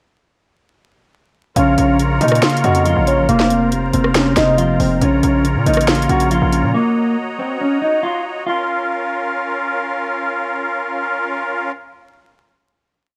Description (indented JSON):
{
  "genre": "hip hop, trap",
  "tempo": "139 BPM",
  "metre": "4/4",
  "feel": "half-time",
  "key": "Bb minor",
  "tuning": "A4 = 440 Hz",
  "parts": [
    { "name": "mellow electric guitar", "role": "melody", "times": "1.6-9.7 s", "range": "Bb3 to Gb4", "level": "-20 LUFS", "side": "equal", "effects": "none" },
    { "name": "soft octave-layered synth lead", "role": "second line", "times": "1.6-5.0 s", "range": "Db5 to F5", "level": "-23 LUFS", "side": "equal", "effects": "chorus, delay" },
    { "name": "mellow tine electric piano", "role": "accompaniment", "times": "1.6-6.8 s", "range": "C3 to Db4", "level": "-21 LUFS", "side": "equal", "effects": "none" },
    { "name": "musette accordion", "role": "sustained chords", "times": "1.6-11.7 s", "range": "Db4 to Bb5", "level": "-24 LUFS", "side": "equal", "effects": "none" },
    { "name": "distorted 808-style bass", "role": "bass", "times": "1.6-6.7 s", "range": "F1 to Bb2", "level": "-22 LUFS", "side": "equal", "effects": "distortion" },
    { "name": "trap drum kit", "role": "drums", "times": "1.6-6.6 s", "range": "finger snaps, hi-hat, rim click, snare drum", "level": "-22 LUFS", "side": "equal", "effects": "overdrive" }
  ],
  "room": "light reverb, digital ambience",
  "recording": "vinyl crackle",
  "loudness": "-17 LUFS",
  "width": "mono",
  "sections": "1.6-8.5 hook; 8.5-11.9 final chord",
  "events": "none",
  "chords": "1.6 Bbm; 3.3 Fsus4; 5.0 Bbm; 6.7 Ebm7; 8.5 Bbm"
}